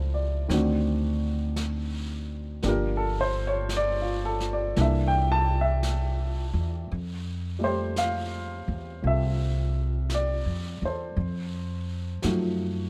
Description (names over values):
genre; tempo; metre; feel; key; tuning
jazz ballad; 56 BPM; 4/4; swing 66% on 8ths; F major; A4 = 443 Hz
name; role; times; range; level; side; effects
warm baby grand piano; accompaniment; 0.0-12.9 s; Eb3 to A5; -31 LUFS; equal; none
upright bass; bass; 0.0-12.9 s; G1 to Gb2; -30 LUFS; equal; none
jazz brush drum kit; drums; 0.5-12.9 s; brushed snare drum, hi-hat, snare drum; -43 LUFS; equal; none
room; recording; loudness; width
little or no reverb; dark, warm production; -27 LUFS; mono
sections
0.0-6.9 A section; 6.9-12.9 B section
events
none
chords
0.5 D7b9; 2.6 Gm7; 4.8 C13; 6.9 Fmaj9; 11.2 F7b9